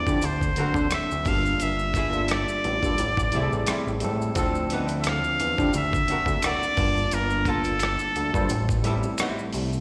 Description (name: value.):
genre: R&B, neo-soul.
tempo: 87 BPM.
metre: 4/4.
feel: swing 55% on 16ths.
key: D minor.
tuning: A4 = 440 Hz.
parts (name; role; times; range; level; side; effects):
trumpet with straight mute; melody; 0.0-8.9 s; A4 to F5; -29 LUFS; equal; slapback echo.
barky tine electric piano; accompaniment; 0.0-9.8 s; F3 to A5; -32 LUFS; equal; overdrive, slapback echo.
fat analog bass; bass; 0.0-9.8 s; G1 to D3; -29 LUFS; equal; none.
dusty soul sampler-style drum kit; drums; 0.1-9.7 s; hi-hat, kick drum, rim click; -31 LUFS; equal; overdrive.
maracas and finger snaps; percussion; 0.1-9.8 s; none; -42 LUFS; equal; slapback echo.
archtop guitar, miked and amplified; second line; 0.6-9.4 s; F3 to Bb4; -35 LUFS; equal; slapback echo.
room: small room ambience.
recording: live gig heard through the venue's PA, recital hall reverb.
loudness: -25 LUFS.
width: mono.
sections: 0.0-4.4 A section; 4.4-9.8 B section.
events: none.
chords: 0.2 D7b13; 1.3 Gm9; 3.0 Am7; 4.4 Dm9; 5.7 D7b13; 6.8 Gm9; 8.5 Am7.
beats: 0.22 0.91 | 1.60 2.29 2.98 3.67 | 4.36 5.05 5.74 6.43 | 7.12 7.81 8.50 9.19.